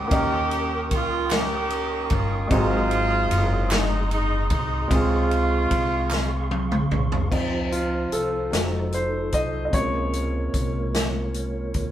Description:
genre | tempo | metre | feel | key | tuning
slow gospel | 50 BPM (dotted quarters) | 6/8 | straight | Db major | A4 = 438 Hz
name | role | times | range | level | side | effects
warm horn section | melody | 0.0-6.9 s | Ab3 to G4 | -26 LUFS | right 2 dB | none
warm grand piano | accompaniment | 0.0-11.9 s | Ab2 to Eb5 | -27 LUFS | equal | none
mellow tonewheel organ | sustained chords | 0.0-11.9 s | F3 to Eb6 | -31 LUFS | right 2 dB | fast rotary speaker, chorus vibrato
upright bass | bass | 0.0-11.9 s | F1 to Eb2 | -27 LUFS | equal | none
swinging big-band drum kit | drums | 0.1-11.9 s | crash cymbal, hi-hat, kick drum, ride cymbal, snare drum, toms | -26 LUFS | equal | none
group handclap | percussion | 1.3-6.5 s | none | -34 LUFS | right 1 dB | none
room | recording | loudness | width
moderate studio reverb, RT60 1.0 s | band playing live in one room | -21 LUFS | side -11 dB against mid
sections
0.0-7.3 A section; 7.3-11.9 B section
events
drum fill 6.1-7.3; grand piano solo 7.3-11.9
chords
0.1 Eb7; 2.5 Ab7; 4.9 Dbmaj7; 8.5 F7b9; 9.7 Bbm7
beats
| 0.11 1.31 | 2.51 3.71 | 4.91 6.11 | 7.32 8.53 | 9.73 10.94

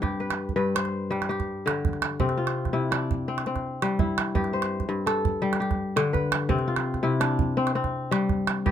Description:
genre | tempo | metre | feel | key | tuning
west african traditional, West African string and xylophone music | 111 BPM (dotted quarters) | 12/8 | straight | C major | A4 = 438 Hz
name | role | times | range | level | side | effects
kora | arpeggios | 0.0-8.7 s | G2 to C5 | -25 LUFS | left 2 dB | none
calabash | percussion | 0.0-8.7 s | none | -28 LUFS | right 6 dB | none
room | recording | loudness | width
little or no reverb | close, detailed microphones | -24 LUFS | side -9 dB against mid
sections
0.0-2.2 A section; 2.2-8.7 B section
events
none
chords
0.0 G; 2.2 C; 4.3 G; 6.5 C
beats
| 0.03 0.57 1.11 1.65 | 2.19 2.73 3.27 3.81 | 4.35 4.89 5.43 5.97 | 6.50 7.04 7.58 8.12 | 8.65

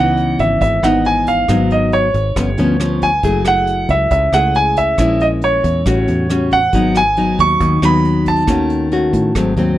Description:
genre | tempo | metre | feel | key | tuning
bossa nova | 137 BPM | 4/4 | straight | unclear | A4 = 440 Hz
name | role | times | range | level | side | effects
clear concert grand piano | melody | 0.0-9.5 s | C#5 to C#6 | -16 LUFS | right 2 dB | none
nylon-string guitar | accompaniment | 0.0-9.8 s | G2 to G#4 | -16 LUFS | left 2 dB | none
fingered electric bass | bass | 0.0-9.8 s | F#1 to A2 | -19 LUFS | equal | none
vintage brush drum kit | drums | 0.2-9.7 s | hi-hat, kick drum, rim click | -24 LUFS | equal | none
room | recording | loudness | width
light reverb | dry, close 1970s-style studio recording | -12 LUFS | side -14 dB against mid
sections
0.0-9.8 A section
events
none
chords
0.0 C#m9; 1.5 G#m7; 2.4 G7#11; 3.2 F#m9; 5.0 A#m7b5; 5.9 A6; 6.7 G#m7; 8.5 D#m7b5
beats
0.17 0.61 1.05 | 1.49 1.92 2.36 2.80 | 3.23 3.67 4.11 4.54 | 4.98 5.42 5.85 6.29 | 6.73 7.17 7.60 8.04 | 8.48 8.91 9.35

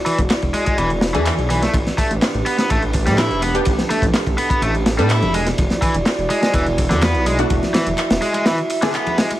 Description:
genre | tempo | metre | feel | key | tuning
breakbeat, breaks | 125 BPM | 4/4 | straight | unclear | A4 = 440 Hz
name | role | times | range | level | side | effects
dark analog pad | sustained chords | 0.0-9.4 s | D4 to E5 | -24 LUFS | right 2 dB | chorus, vintage 12-bit sampler grit, sidechain pumping
cranked stack guitar | riff | 0.1-9.3 s | D3 to E4 | -21 LUFS | equal | overdrive, tape echo
crunchy breakbeat drum kit | drums | 0.1-9.4 s | kick drum, ride cymbal, snare drum | -20 LUFS | equal | none
punchy analog drum machine | drums | 0.1-9.4 s | handclaps, hi-hat | -28 LUFS | equal | none
detuned saw bass | bass | 0.2-8.2 s | E1 to A2 | -21 LUFS | equal | none
orchestra-hit-like synth stab | stabs | 1.1-8.9 s | A3 to A4 | -24 LUFS | left 1 dB | built-in reverb, tape echo
congas | percussion | 1.9-9.4 s | none | -28 LUFS | left 1 dB | none
room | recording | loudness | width
light reverb | vinyl crackle | -15 LUFS | side -14 dB against mid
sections
0.0-9.4 A section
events
kick drops out 8.5-9.4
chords
0.0 E9sus4; 1.7 A9sus4; 5.3 E7sus2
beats
0.30 0.78 1.26 | 1.74 2.22 2.70 3.18 | 3.66 4.14 4.62 5.10 | 5.58 6.06 6.54 7.02 | 7.50 7.98 8.46 8.94

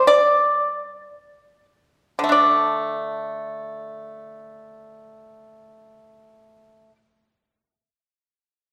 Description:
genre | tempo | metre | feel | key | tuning
chinese traditional, Chinese solo plucked strings | free time | none | none | unclear | A4 = 440 Hz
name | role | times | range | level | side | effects
pipa | solo | 0.0-7.0 s | D3 to D5 | -20 LUFS | equal | none
room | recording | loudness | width
wet recital hall reverb, RT60 1.4 s | recorded in a church or concert hall | -20 LUFS | mono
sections
0.0-2.3 A section; 2.3-7.3 B section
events
slowing down 0.0-2.3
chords
none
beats
free time

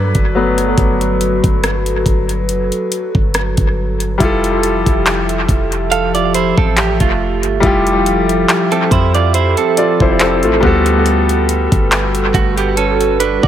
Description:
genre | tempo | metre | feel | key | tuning
contemporary R&B | 70 BPM | 4/4 | swing 54% on 16ths | F major | A4 = 440 Hz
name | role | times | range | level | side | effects
clear grand piano | accompaniment | 0.0-13.5 s | F#3 to D5 | -17 LUFS | left 2 dB | dub echo
hollow soft pad | sustained chords | 0.0-13.5 s | F3 to E5 | -19 LUFS | right 1 dB | chorus, sidechain pumping
warm 808-style bass | bass | 0.0-13.5 s | F1 to G2 | -18 LUFS | equal | none
smooth R&B drum kit | drums | 0.1-13.5 s | handclaps, hi-hat, kick drum, rim click | -17 LUFS | equal | dub echo
direct-recorded clean electric guitar | arpeggios | 5.9-13.5 s | A3 to F5 | -17 LUFS | right 8 dB | vibrato effect, dub echo
room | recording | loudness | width
light reverb | echo-heavy mix | -12 LUFS | side -10 dB against mid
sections
0.0-4.2 A section; 4.2-13.5 B section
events
grand piano solo 0.0-4.2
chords
0.0 Gmaj9; 4.2 Fmaj9; 10.6 Gmaj9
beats
| 0.77 1.63 2.49 3.35 | 4.20 5.06 5.92 6.77 | 7.63 8.49 9.35 10.20 | 11.06 11.92 12.77

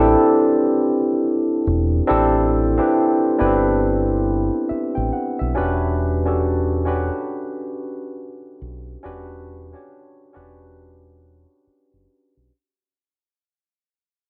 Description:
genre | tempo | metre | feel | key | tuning
R&B, neo-soul | 69 BPM | 4/4 | swing 61% on 16ths | unclear | A4 = 440 Hz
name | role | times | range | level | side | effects
barky tine electric piano | accompaniment | 0.0-12.5 s | B3 to G5 | -21 LUFS | equal | overdrive, subtle chorus, cassette tape
deep dub fingered electric bass | bass | 0.0-12.5 s | E1 to B1 | -25 LUFS | equal | none
room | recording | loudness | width
light reverb | home recording on cassette | -19 LUFS | mono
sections
0.0-12.5 A section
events
fade-out 0.0-12.5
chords
0.0 Am9; 5.6 Em9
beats
0.34 1.21 | 2.08 2.95 3.82 4.69 | 5.56 6.42 7.29 8.16 | 9.03 9.90 10.77 11.64

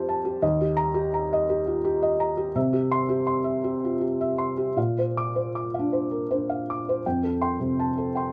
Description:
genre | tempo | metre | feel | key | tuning
neoclassical minimalist piano | 78-86 BPM | 3/4 | rubato | unclear | A4 = 439 Hz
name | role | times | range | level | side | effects
felt-muted upright piano | solo | 0.0-8.3 s | Eb2 to D6 | -26 LUFS | equal | none
room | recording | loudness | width
light reverb | none | -25 LUFS | mono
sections
0.0-7.0 A section; 7.0-8.3 B section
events
none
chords
0.4 Eb; 2.6 C; 4.8 Bbadd9; 7.0 Fadd9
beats
| 0.42 1.13 1.84 | 2.55 3.27 4.01 | 4.77 5.53 6.29 | 7.04 7.77

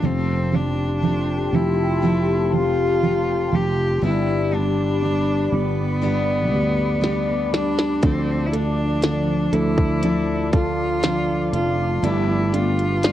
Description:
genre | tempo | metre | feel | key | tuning
pop ballad | 60 BPM | 4/4 | straight | unclear | A4 = 441 Hz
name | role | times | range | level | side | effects
bright cello | melody | 0.0-13.1 s | B3 to G4 | -24 LUFS | equal | cassette tape
dark baby grand piano | accompaniment | 0.0-13.1 s | D3 to D4 | -27 LUFS | right 6 dB | none
glassy FM pad | sustained chords | 0.8-13.1 s | F3 to D6 | -27 LUFS | left 3 dB | ensemble chorus, built-in reverb, phaser
picked steel-string acoustic guitar | arpeggios | 0.0-13.1 s | G2 to A4 | -27 LUFS | left 6 dB | analog delay
sustaining fretless electric bass | bass | 0.0-13.1 s | F1 to D2 | -24 LUFS | equal | none
glitchy drum kit | drums | 7.0-13.1 s | hi-hat, kick drum, snare drum | -20 LUFS | equal | overdrive, cassette tape
room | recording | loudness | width
light reverb | home recording on cassette | -18 LUFS | side -12 dB against mid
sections
0.0-13.1 A section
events
drum fill 7.0-8.0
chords
0.0 Fadd9; 4.0 G; 8.0 Dm; 12.0 Gadd9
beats
| 0.03 1.03 2.03 3.03 | 4.03 5.03 6.03 7.03 | 8.03 9.03 10.03 11.03 | 12.03 13.03

